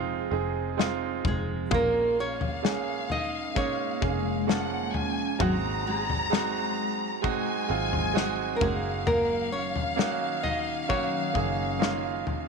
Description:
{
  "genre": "pop ballad",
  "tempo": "65 BPM",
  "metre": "4/4",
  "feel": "straight",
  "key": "Bb minor",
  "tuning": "A4 = 442 Hz",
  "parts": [
    { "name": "nylon-string guitar", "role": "melody", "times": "0.0-12.5 s", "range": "Gb3 to Eb5", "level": "-31 LUFS", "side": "equal", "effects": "none" },
    { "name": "clear baby grand piano", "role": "accompaniment", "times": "0.0-12.5 s", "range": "Ab2 to Ab4", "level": "-31 LUFS", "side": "right 12 dB", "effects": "none" },
    { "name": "ethereal airy pad", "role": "sustained chords", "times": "0.0-12.5 s", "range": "Eb3 to Ab4", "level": "-36 LUFS", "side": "left 2 dB", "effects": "ensemble chorus, built-in reverb, phaser" },
    { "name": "fingered electric bass", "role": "bass", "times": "0.0-12.2 s", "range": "F1 to Bb1", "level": "-34 LUFS", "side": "left 1 dB", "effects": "none" },
    { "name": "loose indie drum kit", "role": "drums", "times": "0.8-12.5 s", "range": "kick drum, snare drum, toms", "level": "-30 LUFS", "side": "left 5 dB", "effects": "none" },
    { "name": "warm studio violin section", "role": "second line", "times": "1.7-12.5 s", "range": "F5 to Bb5", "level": "-32 LUFS", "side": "left 3 dB", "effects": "none" }
  ],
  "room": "moderate spring reverb, RT60 2.3 s",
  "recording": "1960s-style stereo",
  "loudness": "-25 LUFS",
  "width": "side -4 dB against mid",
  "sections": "0.0-12.5 A section",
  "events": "none",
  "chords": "0.0 Fm7; 1.7 Bbm7; 5.4 Ab7; 8.6 Ebm7/Gb"
}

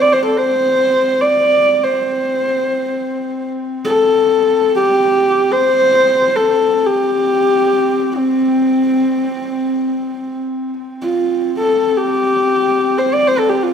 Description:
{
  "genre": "mongolian traditional, Mongolian folk",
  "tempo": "free time",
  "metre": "none",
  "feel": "none",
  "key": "C zhi mode",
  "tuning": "A4 = 441 Hz",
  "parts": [
    { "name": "dark horsehead fiddle", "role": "melody", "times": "0.0-13.7 s", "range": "C4 to D5", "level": "-13 LUFS", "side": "equal", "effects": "none" },
    { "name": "rich horsehead fiddle", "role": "drone", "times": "0.0-13.7 s", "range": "C4", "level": "-22 LUFS", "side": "left 1 dB", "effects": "none" }
  ],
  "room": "moderate recital hall reverb, RT60 1.5 s",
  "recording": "none",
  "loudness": "-13 LUFS",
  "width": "side -7 dB against mid",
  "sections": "0.0-10.8 A section; 10.8-13.7 A section",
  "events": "none",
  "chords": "none"
}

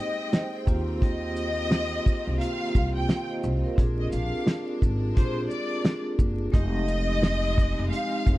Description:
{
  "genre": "hip hop, boom-bap hip-hop",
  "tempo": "87 BPM",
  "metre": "4/4",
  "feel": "swing 63% on 16ths",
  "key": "unclear",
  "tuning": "A4 = 440 Hz",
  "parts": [
    { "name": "warm studio violin section", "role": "melody", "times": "0.0-8.4 s", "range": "C5 to G5", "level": "-31 LUFS", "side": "left 1 dB", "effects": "slapback echo" },
    { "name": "vibraphone with medium mallets", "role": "accompaniment", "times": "0.0-8.4 s", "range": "Ab3 to G5", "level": "-30 LUFS", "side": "right 1 dB", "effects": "cassette tape" },
    { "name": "bright studio string section", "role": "sustained chords", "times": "0.0-8.4 s", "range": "Eb3 to G5", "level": "-42 LUFS", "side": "left 2 dB", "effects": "none" },
    { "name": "cloth-damped thuddy drum kit", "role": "drums", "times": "0.3-8.4 s", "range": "hi-hat, kick drum, shaker, snare drum", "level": "-23 LUFS", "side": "equal", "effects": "none" },
    { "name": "upright bass", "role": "bass", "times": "0.7-8.4 s", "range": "F1 to Eb2", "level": "-28 LUFS", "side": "equal", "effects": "none" }
  ],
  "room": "light reverb",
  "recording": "dark, warm production, vinyl crackle",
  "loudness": "-23 LUFS",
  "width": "side -17 dB against mid",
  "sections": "0.0-8.4 A section",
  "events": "none",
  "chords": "0.0 Abmaj9; 0.7 Eb69; 3.8 Bb7; 6.5 Fm7"
}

